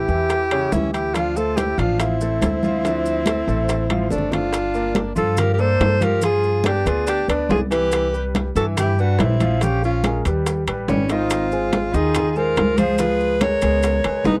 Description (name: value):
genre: Afro-Cuban jazz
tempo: 142 BPM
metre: 4/4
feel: straight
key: D minor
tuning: A4 = 440 Hz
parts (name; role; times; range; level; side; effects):
- warm alto saxophone; melody; 0.0-14.4 s; C#4 to C#5; -24 LUFS; equal; none
- breathy tenor saxophone; second line; 0.0-14.4 s; G3 to A#4; -32 LUFS; equal; none
- warm grand piano; accompaniment; 0.0-14.4 s; C#3 to F5; -28 LUFS; equal; none
- upright bass; bass; 0.0-14.4 s; G1 to G2; -25 LUFS; equal; none
- bongos; percussion; 0.1-14.4 s; none; -32 LUFS; equal; none
- congas; percussion; 0.1-14.4 s; none; -28 LUFS; equal; none
- maracas; percussion; 0.1-14.4 s; none; -40 LUFS; equal; none
- timbales; percussion; 0.3-14.4 s; none; -30 LUFS; equal; none
room: light reverb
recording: dry, close 1970s-style studio recording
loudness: -20 LUFS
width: mono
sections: 0.0-4.5 A section; 4.5-14.4 B section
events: drum fill 3.9-4.5, 11.1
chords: 0.0 A7 (rootless); 1.1 Dm9; 4.5 Gm9; 6.2 G7b9; 7.9 Cmaj7; 9.6 Bbm7; 10.5 Ebaug; 11.3 Ab69; 13.0 C#13